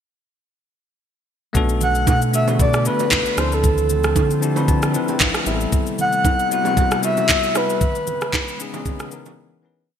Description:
amapiano; 115 BPM; 4/4; swing 55% on 16ths; B phrygian; A4 = 435 Hz
bell-like tine electric piano; accompaniment; 1.5-9.9 s; E3 to B5; -25 LUFS; left 4 dB
airy breathy pad; sustained chords; 2.0-9.9 s; C3 to C4; -30 LUFS; right 1 dB; chorus, sidechain pumping
afro-pop drum kit; drums; 1.5-9.4 s; handclaps, kick drum, rim click, shaker; -20 LUFS; equal; gated reverb
congas and bongos; percussion; 1.5-9.4 s; -29 LUFS; right 10 dB
round analog bass; bass; 1.6-5.7 s; A1 to D3; -21 LUFS; equal
breathy flute-like synth lead; melody; 1.8-8.6 s; A4 to F#5; -20 LUFS; equal; chorus, tremolo, ping-pong delay
moderate lush hall reverb, RT60 2.0 s; bright 1980s-style digital production; -16 LUFS; side -8 dB against mid
1.6-9.9 groove
tine electric piano fill 4.2-5.7; fade-out 7.8-9.9; break 9.4-9.9
1.6 Bm7; 3.4 Dm7; 5.5 Am7; 7.8 C#m7

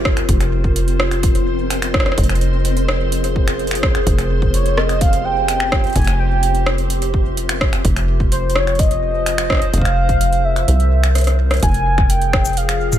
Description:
IDM; 127 BPM; 4/4; straight; F minor; A4 = 440 Hz
warbly tape-like pad; sustained chords; 0.0-13.0 s; C3 to F5; -24 LUFS; left 1 dB; chorus, built-in reverb, phaser
deep acid bass; bass; 0.0-13.0 s; F1 to C2; -18 LUFS; equal
flickering grainy texture; texture; 0.0-11.6 s; C4 to C5; -28 LUFS; left 1 dB; built-in reverb
booming analog drum machine; drums; 0.1-13.0 s; finger snaps, hi-hat, rim click, shaker, toms; -22 LUFS; equal; overdrive
electronic kick drum; drums; 0.1-12.4 s; -18 LUFS; equal
warm velvety synth lead; melody; 4.5-13.0 s; C5 to Ab5; -20 LUFS; equal; chorus, digital delay
little or no reverb; -14 LUFS; side -11 dB against mid
0.0-11.6 A section; 11.6-13.0 B section
kick drops out 10.7-11.6; drum fill 11.2-11.6
0.3 F9sus4; 2.2 Bbsus2/F; 4.1 Fm11; 6.0 C7/F; 7.8 F9sus4; 9.7 Bbsus2/F; 10.7 C7; 11.6 Fm11

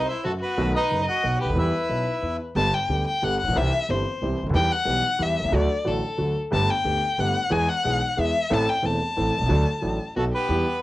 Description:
tango; 182 BPM; 3/4; rubato; G major; A4 = 441 Hz
bandoneon; melody; 0.0-2.4, 10.2-10.8 s; A3 to F#5; -26 LUFS; right 1 dB; cassette tape
warm violin; second line; 0.0-10.8 s; F#4 to A5; -25 LUFS; left 3 dB; cassette tape
warm concert grand piano; accompaniment; 0.0-10.6 s; E1 to A4; -25 LUFS; right 1 dB; cassette tape
upright bass; bass; 0.0-10.6 s; E1 to E2; -29 LUFS; right 1 dB
moderate studio reverb, RT60 0.6 s; home recording on cassette; -21 LUFS; side -16 dB against mid
0.0-2.6 A section; 2.6-10.5 B section
violin solo 2.6-10.5
0.0 F#dim; 0.6 B7; 1.6 Em; 2.6 G; 3.6 C; 4.5 Em; 5.5 D; 6.5 Gadd9; 7.5 E; 8.5 Am; 9.5 D; 10.2 B7

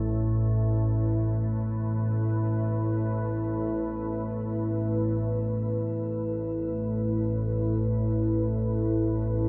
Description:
dark ambient drone; free time; A4 = 440 Hz
deep dark ambient pad; sustained chords; 0.0-9.5 s; A3 to B4; -32 LUFS; equal; chorus, built-in reverb, shimmer reverb
organ-like drone; drone; 0.0-9.5 s; A1 to A2; -30 LUFS; equal; ensemble chorus, built-in reverb
wet cathedral reverb, RT60 5.8 s; cassette tape; -28 LUFS; mono
0.0-5.2 A section; 5.2-9.5 B section
filter sweep on synth drone 5.2-9.5
0.0 A5

